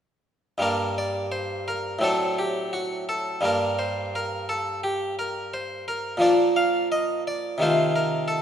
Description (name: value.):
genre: classical, baroque-style suite movement for harpsichord.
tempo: 86 BPM.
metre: 4/4.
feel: rubato.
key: G minor.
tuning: A4 = 440 Hz.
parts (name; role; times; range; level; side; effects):
harpsichord; solo; 0.6-8.4 s; G2 to F5; -22 LUFS; equal; none.
room: moderate concert hall reverb, RT60 1.9 s.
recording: minimal, uncompressed stereo recording.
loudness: -23 LUFS.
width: side -8 dB against mid.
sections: 0.6-8.4 A section.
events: none.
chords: 0.6 Gm; 2.0 D7/A; 3.4 Gm; 6.2 Bb; 7.6 F7/C.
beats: | 0.62 1.33 2.03 2.73 | 3.44 4.15 4.84 5.54 | 6.24 6.93 7.62 8.30.